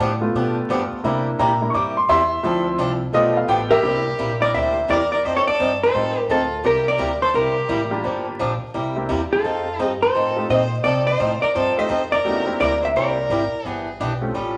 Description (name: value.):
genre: country.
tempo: 171 BPM.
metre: 4/4.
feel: swing 64% on 8ths.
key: C mixolydian.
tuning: A4 = 440 Hz.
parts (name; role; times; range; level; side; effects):
picked swing-style acoustic guitar; accompaniment; 0.0-14.6 s; C3 to A4; -27 LUFS; equal; none.
upright bass; bass; 0.0-14.6 s; G1 to C3; -31 LUFS; equal; none.
clear upright piano; accompaniment; 0.2-14.3 s; F3 to D6; -24 LUFS; equal; none.
vintage hollow-body jazz guitar; melody; 3.7-14.0 s; A4 to E5; -22 LUFS; equal; none.
clear fiddle; second line; 3.7-14.0 s; F4 to C5; -31 LUFS; equal; none.
room: wet large studio reverb, RT60 1.2 s.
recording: vinyl crackle.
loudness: -20 LUFS.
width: mono.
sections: 0.0-3.8 A section; 3.8-14.6 B section.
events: upright piano solo 0.0-3.8.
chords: 0.0 G9; 1.0 C9; 2.4 Dm7; 3.1 G9; 3.8 C9; 5.2 F9; 6.6 C9; 8.0 Gm7; 8.7 C9; 9.4 F9; 12.2 C9; 13.6 Em7.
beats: 0.34 0.69 | 1.04 1.39 1.74 2.09 | 2.44 2.79 3.13 3.48 | 3.83 4.18 4.54 4.88 | 5.24 5.59 5.94 6.29 | 6.64 6.99 7.34 7.69 | 8.04 8.39 8.74 9.09 | 9.44 9.79 10.14 10.49 | 10.84 11.19 11.54 11.89 | 12.24 12.60 12.95 13.30 | 13.65 14.00 14.35.